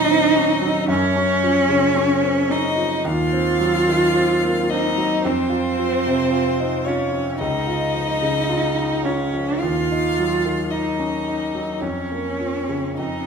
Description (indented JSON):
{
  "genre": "classical, slow romantic movement for piano trio",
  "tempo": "55 BPM",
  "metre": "4/4",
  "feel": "rubato",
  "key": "Bb minor",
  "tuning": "A4 = 443 Hz",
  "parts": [
    { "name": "clear violin", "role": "melody", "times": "0.0-13.3 s", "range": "C5 to F5", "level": "-25 LUFS", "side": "left 9 dB", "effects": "none" },
    { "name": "clear cello", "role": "second line", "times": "0.0-13.3 s", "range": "C4 to F4", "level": "-20 LUFS", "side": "right 4 dB", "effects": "none" },
    { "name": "clear concert grand piano", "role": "accompaniment", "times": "0.0-13.3 s", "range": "Db2 to F4", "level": "-22 LUFS", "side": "equal", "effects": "none" }
  ],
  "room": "wet recital hall reverb, RT60 1.5 s",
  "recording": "minimal, uncompressed stereo recording",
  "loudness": "-18 LUFS",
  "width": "side -6 dB against mid",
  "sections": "0.0-13.3 A section",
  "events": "none",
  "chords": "0.0 Ebm7; 0.9 Gb5; 3.0 Cdim/Eb; 5.2 F5; 7.4 Dbadd9; 9.6 Ebm9; 11.8 Bbm/F",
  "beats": "| 0.89 1.96 3.05 4.14 | 5.25 6.32 7.38 8.47 | 9.59 10.70 11.81 12.97"
}